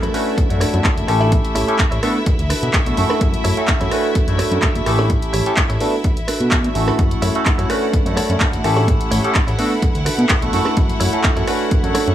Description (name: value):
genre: filtered disco house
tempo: 127 BPM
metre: 4/4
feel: swing 54% on 16ths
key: B minor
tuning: A4 = 439 Hz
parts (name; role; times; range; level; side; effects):
- barky tine electric piano; accompaniment; 0.0-12.1 s; A3 to C#5; -20 LUFS; equal; phaser, sidechain pumping
- bright studio violin section; sustained chords; 0.0-12.1 s; E4 to F#5; -27 LUFS; left 1 dB; sidechain pumping
- direct-recorded clean electric guitar; riff; 0.0-12.1 s; D4 to E5; -24 LUFS; right 2 dB; sidechain pumping
- fat analog bass; bass; 0.0-12.1 s; F#1 to B2; -20 LUFS; equal; sidechain pumping
- punchy analog drum machine; drums; 0.0-12.1 s; handclaps, hi-hat, rim click; -23 LUFS; equal; sidechain pumping on hats
- electronic kick drum; drums; 0.4-11.8 s; none; -19 LUFS; equal; none
room: light reverb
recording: small room ambience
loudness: -15 LUFS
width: side -11 dB against mid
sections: 0.0-12.1 A section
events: none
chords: 0.4 Dmaj7/F#; 1.3 A7; 2.0 Bm7; 3.2 F#m7; 4.2 Dmaj7/F#; 5.1 A7; 5.8 Bm7; 7.0 F#m7; 7.9 Dmaj7/F#; 8.9 A7; 9.6 Bm7; 10.8 F#m7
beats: 0.38 0.85 | 1.32 1.79 2.27 2.74 | 3.21 3.68 4.16 4.63 | 5.10 5.57 6.04 6.52 | 6.99 7.46 7.93 8.41 | 8.88 9.35 9.82 10.30 | 10.77 11.24 11.71